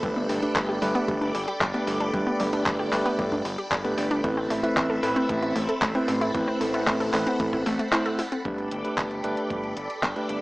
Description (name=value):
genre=italo disco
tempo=114 BPM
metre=4/4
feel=straight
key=unclear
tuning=A4 = 440 Hz
part: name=phased string machine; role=sustained chords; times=0.0-10.4 s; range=C4 to B5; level=-31 LUFS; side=equal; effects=ensemble chorus, phaser
part: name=wide unison pluck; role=arpeggios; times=0.0-8.4 s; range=G3 to A4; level=-30 LUFS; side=equal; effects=tape echo
part: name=tine electric piano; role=stabs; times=0.0-10.4 s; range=A3 to C5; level=-28 LUFS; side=right 1 dB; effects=medium stereo tremolo
part: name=fat analog bass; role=bass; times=0.0-10.4 s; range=G1 to A1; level=-33 LUFS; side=equal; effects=tape echo
part: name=clean 12-bit digital drum machine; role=drums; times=0.0-10.4 s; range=handclaps, hi-hat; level=-29 LUFS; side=equal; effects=overdrive
part: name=electronic kick drum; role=drums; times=0.0-10.1 s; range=none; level=-35 LUFS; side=equal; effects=overdrive
room=light reverb, digital ambience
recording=dry, gritty hardware recording, vinyl crackle, small speaker sound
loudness=-23 LUFS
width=side -21 dB against mid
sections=0.0-8.5 A section; 8.5-10.4 B section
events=none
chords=0.0 Gadd9; 4.2 Amadd9; 8.5 Gadd9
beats=| 0.03 0.56 1.08 1.61 | 2.13 2.66 3.19 3.71 | 4.24 4.77 5.29 5.82 | 6.35 6.87 7.40 7.92 | 8.45 8.98 9.50 10.03